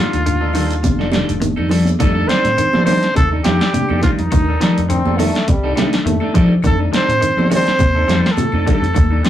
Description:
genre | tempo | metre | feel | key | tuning
afrobeat | 104 BPM | 4/4 | swing 54% on 16ths | F mixolydian | A4 = 441 Hz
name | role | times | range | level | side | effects
clear trumpet | melody | 0.0-9.2 s | Eb4 to C5 | -19 LUFS | right 1 dB | none
mellow reed electric piano | accompaniment | 0.0-9.3 s | Eb3 to D5 | -24 LUFS | left 2 dB | fast tremolo
electric guitar at the edge of break-up | stabs | 0.0-9.3 s | G3 to A4 | -23 LUFS | right 1 dB | phaser
fingered electric bass | bass | 0.1-9.2 s | F1 to F3 | -20 LUFS | equal | none
punchy analog drum machine | drums | 0.1-9.3 s | hi-hat, kick drum, snare drum | -18 LUFS | equal | none
shekere | percussion | 0.1-9.3 s | none | -28 LUFS | equal | none
clean electric guitar | arpeggios | 0.3-9.3 s | C3 to F3 | -22 LUFS | left 2 dB | warbly pitch drift
claves | percussion | 0.3-9.1 s | none | -38 LUFS | left 4 dB | none
congas | percussion | 0.5-9.1 s | none | -23 LUFS | right 2 dB | none
breathy trombone | second line | 2.0-9.2 s | Eb3 to C4 | -27 LUFS | right 2 dB | none
bright bass trombone | second line | 4.9-9.3 s | G3 to C4 | -22 LUFS | left 2 dB | none
room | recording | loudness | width
wet small room reverb, RT60 0.5 s | rough rehearsal-room recording | -13 LUFS | side -11 dB against mid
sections
0.0-2.0 A section; 2.0-9.3 B section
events
kick and snare drop out 1.4-2.0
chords
0.0 F13

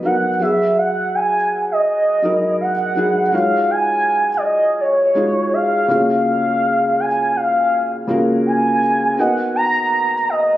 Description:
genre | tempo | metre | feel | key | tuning
R&B | 82 BPM | 4/4 | swing 54% on 16ths | Eb minor | A4 = 439 Hz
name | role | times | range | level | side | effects
gliding portamento lead | melody | 0.0-10.6 s | Db5 to A#5 | -16 LUFS | equal | chorus, digital delay
felt-muted upright piano | accompaniment | 0.0-10.6 s | Db3 to D#5 | -20 LUFS | equal | none
room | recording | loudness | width
light reverb, studio ambience | recorded on a phone in the room, club reverb, compression | -15 LUFS | side -14 dB against mid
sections
0.0-3.3 A section; 3.3-10.6 B section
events
none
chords
0.4 Emaj9; 3.3 Ebm11; 5.9 Gbmaj9/Db; 9.2 Bmaj7

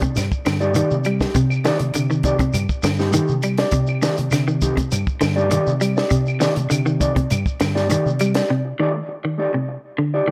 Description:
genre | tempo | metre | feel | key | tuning
afrobeat | 101 BPM | 4/4 | straight | C dorian | A4 = 440 Hz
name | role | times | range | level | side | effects
semi-hollow electric guitar | arpeggios | 0.0-10.3 s | C3 to G3 | -24 LUFS | equal | none
mellow electric guitar | stabs | 0.0-10.3 s | A3 to D5 | -26 LUFS | equal | harmonic tremolo, tape echo
deep dub fingered electric bass | bass | 0.0-8.4 s | G2 to C3 | -25 LUFS | equal | none
compact cocktail drum kit | drums | 0.0-8.5 s | hi-hat, kick drum, snare drum | -26 LUFS | equal | none
shekere | percussion | 0.0-8.5 s | none | -30 LUFS | equal | none
claves | percussion | 0.2-8.3 s | none | -35 LUFS | equal | none
room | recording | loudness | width
moderate studio reverb, RT60 0.8 s | none | -20 LUFS | mono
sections
0.0-10.3 A section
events
break 8.5-10.3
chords
0.0 Cm69

